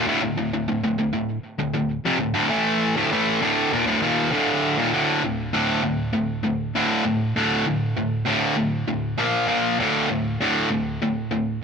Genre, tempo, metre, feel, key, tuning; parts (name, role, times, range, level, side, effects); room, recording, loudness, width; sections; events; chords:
metal; 99 BPM; 4/4; straight; D minor; A4 = 441 Hz
distorted electric guitar; solo; 0.0-11.6 s; D2 to Bb3; -20 LUFS; equal; overdrive, tape echo
moderate studio ambience, RT60 0.5 s; -20 LUFS; side -6 dB against mid
0.0-4.9 A section; 4.9-11.6 B section
0.0 D5; 9.2 Bb5; 9.8 D5